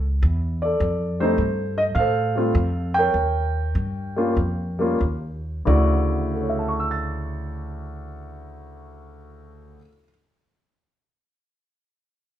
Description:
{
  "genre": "jazz piano trio",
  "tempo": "89-105 BPM",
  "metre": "4/4",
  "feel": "swing 69% on 8ths",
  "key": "D major",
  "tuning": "A4 = 440 Hz",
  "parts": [
    { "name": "warm concert grand piano", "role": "melody", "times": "0.0-10.1 s", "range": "D2 to A6", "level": "-23 LUFS", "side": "equal", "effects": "none" },
    { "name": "upright bass", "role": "bass", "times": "0.0-9.7 s", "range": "C#2 to A2", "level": "-24 LUFS", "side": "equal", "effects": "none" }
  ],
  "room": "moderate large studio reverb, RT60 0.9 s",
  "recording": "heard from further back in the room",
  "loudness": "-20 LUFS",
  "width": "side -11 dB against mid",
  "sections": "0.0-5.7 A section; 5.7-8.4 B section",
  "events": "slowing down 0.8-5.7",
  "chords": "0.0 F#7(no3) (rootless); 0.8 F; 3.1 Eb7; 5.7 Dmaj9"
}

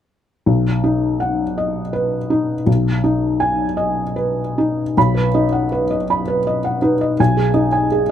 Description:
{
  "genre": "neoclassical minimalist piano",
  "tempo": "54 BPM (dotted quarters)",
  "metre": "6/8",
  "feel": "rubato",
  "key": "B major",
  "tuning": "A4 = 438 Hz",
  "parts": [
    { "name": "felt-muted upright piano", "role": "solo", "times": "0.5-8.1 s", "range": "B1 to B5", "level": "-15 LUFS", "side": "equal", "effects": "none" }
  ],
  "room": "little or no reverb",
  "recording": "close, detailed microphones",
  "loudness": "-16 LUFS",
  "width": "side -10 dB against mid",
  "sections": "0.5-5.0 A section; 5.0-8.1 B section",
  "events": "none",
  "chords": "0.5 B; 2.7 G#m/B; 5.0 B; 7.2 G#m/B"
}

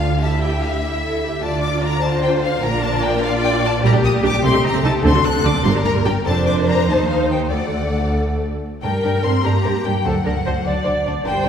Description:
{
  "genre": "quick classical-period movement for string orchestra",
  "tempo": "99 BPM (dotted quarters)",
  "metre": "6/8",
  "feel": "rubato",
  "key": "G minor from 3.8 s",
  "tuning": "A4 = 440 Hz",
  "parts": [
    { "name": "rich studio violin section", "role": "melody", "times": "0.0-11.5 s", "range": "E5 to F#6", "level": "-24 LUFS", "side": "left 5 dB", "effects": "none" },
    { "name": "rich studio violin section", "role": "second line", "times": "0.0-11.5 s", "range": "D4 to F5", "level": "-23 LUFS", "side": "left 3 dB", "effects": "none" },
    { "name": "rich studio viola section", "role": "accompaniment", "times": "0.0-11.5 s", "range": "G3 to D5", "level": "-22 LUFS", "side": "right 1 dB", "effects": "none" },
    { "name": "rich studio cello section", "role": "bass", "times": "0.0-11.5 s", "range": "D2 to C4", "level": "-23 LUFS", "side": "right 2 dB", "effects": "none" },
    { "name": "rich studio double bass section", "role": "bass", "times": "0.0-11.5 s", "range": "F1 to G2", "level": "-22 LUFS", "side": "right 1 dB", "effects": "none" }
  ],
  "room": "wet scoring stage reverb, RT60 1.6 s",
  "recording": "heard from further back in the room",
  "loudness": "-16 LUFS",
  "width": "side -8 dB against mid",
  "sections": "0.0-8.8 A section; 8.8-11.5 B section",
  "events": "none",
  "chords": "0.2 A5/D; 1.4 Dm; 2.6 Bb; 3.8 Gm/Bb; 4.4 Adim/C; 5.0 D7; 5.6 Gm; 6.3 Dm/F; 6.9 Cm/Eb; 7.5 D; 8.8 Gm; 10.1 D7"
}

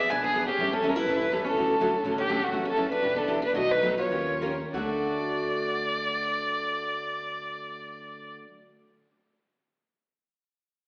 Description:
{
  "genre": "acoustic string swing (jazz manouche)",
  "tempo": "173-247 BPM",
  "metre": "4/4",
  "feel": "swing 55% on 8ths",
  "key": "D major",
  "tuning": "A4 = 440 Hz",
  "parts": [
    { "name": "dark violin", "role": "melody", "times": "0.0-8.3 s", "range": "F#4 to G#5", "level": "-30 LUFS", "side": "equal", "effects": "none" },
    { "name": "picked swing-style acoustic guitar", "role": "second line", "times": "0.0-8.4 s", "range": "A3 to B4", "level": "-35 LUFS", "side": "equal", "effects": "none" },
    { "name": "picked steel-string acoustic guitar", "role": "accompaniment", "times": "0.1-8.5 s", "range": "B2 to Bb4", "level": "-36 LUFS", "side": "equal", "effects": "none" },
    { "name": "picked steel-string acoustic guitar", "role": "accompaniment", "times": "0.1-8.5 s", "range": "B2 to B4", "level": "-38 LUFS", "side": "equal", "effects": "none" },
    { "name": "upright bass", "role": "bass", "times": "0.1-8.4 s", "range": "E1 to Eb2", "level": "-47 LUFS", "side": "equal", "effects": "none" }
  ],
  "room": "wet recital hall reverb, RT60 1.6 s",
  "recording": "recorded in a church or concert hall, AM radio sound",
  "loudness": "-27 LUFS",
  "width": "mono",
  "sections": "0.0-2.5 A section; 2.5-4.7 B section; 4.7-7.5 C section",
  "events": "slowing down 2.5-4.7",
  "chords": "0.0 E7; 0.6 A7; 1.6 Dmaj7; 2.5 F#m7; 3.0 Em7; 3.5 B7; 4.1 Eb9; 4.7 D"
}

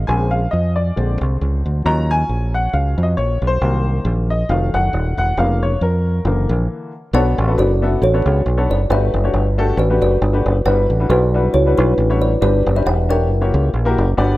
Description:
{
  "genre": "uptempo gospel",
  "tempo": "136 BPM",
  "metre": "4/4",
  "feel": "swing 55% on 8ths",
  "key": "Bb minor, B minor from 7.1 s",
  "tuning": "A4 = 440 Hz",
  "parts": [
    { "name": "fingered electric bass", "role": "bass", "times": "0.0-14.4 s", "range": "Eb1 to F2", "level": "-16 LUFS", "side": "equal", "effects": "none" },
    { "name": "warm upright piano", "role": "accompaniment", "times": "0.1-14.4 s", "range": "G2 to Bb5", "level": "-21 LUFS", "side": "left 2 dB", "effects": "none" },
    { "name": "kalimba", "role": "melody", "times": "7.1-13.9 s", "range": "D4 to G5", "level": "-19 LUFS", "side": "equal", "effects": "none" }
  ],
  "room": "light reverb, small room ambience",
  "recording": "rough home demo mix",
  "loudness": "-14 LUFS",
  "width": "side -17 dB against mid",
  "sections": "0.0-7.1 A section; 7.1-14.4 B section",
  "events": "upright piano solo 0.0-7.1; break 6.7-7.1",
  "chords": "0.1 Bbm7; 1.0 Bb7; 1.8 Ebm7; 3.6 Cm7b5; 4.5 F7b9; 5.4 Bbm/F; 6.3 Gbaug7; 7.1 Bm9; 8.9 Gmaj9; 10.7 Em9/G; 12.4 G; 13.3 F#7b9"
}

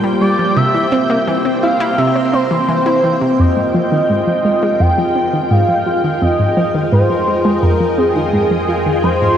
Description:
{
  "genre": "ambient, sequencer-driven space music",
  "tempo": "85 BPM",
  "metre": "4/4",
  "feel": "straight",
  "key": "F minor from 3.4 s",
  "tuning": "A4 = 438 Hz",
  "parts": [
    { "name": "string machine, full ensemble", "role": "sustained chords", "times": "0.0-9.4 s", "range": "G3 to Bb5", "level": "-18 LUFS", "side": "equal", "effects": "ensemble chorus" },
    { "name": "analog pluck", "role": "riff", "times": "0.0-9.3 s", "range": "F2 to E4", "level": "-16 LUFS", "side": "equal", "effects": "chorus, tape echo" },
    { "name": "pulsing gated texture", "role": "texture", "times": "0.0-9.4 s", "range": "Bb3 to Bb4", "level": "-28 LUFS", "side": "right 1 dB", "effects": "chorus, built-in reverb" },
    { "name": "pulse-width lead", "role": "melody", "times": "0.2-9.4 s", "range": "Ab4 to G5", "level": "-17 LUFS", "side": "equal", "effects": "chorus, tape echo" },
    { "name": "fat analog bass", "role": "bass", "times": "3.4-9.4 s", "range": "F2", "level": "-30 LUFS", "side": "equal", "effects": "none" }
  ],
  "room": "wet huge ambient reverb, RT60 8.0 s",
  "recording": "none",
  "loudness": "-12 LUFS",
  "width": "side -9 dB against mid",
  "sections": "0.0-3.4 A section; 3.4-9.4 B section",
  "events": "fade-in on analog synth bass 3.4-9.4; filter sweep on synth arpeggio sound 3.4-9.4",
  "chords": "0.0 Gm7; 0.6 C7; 3.4 Fm7"
}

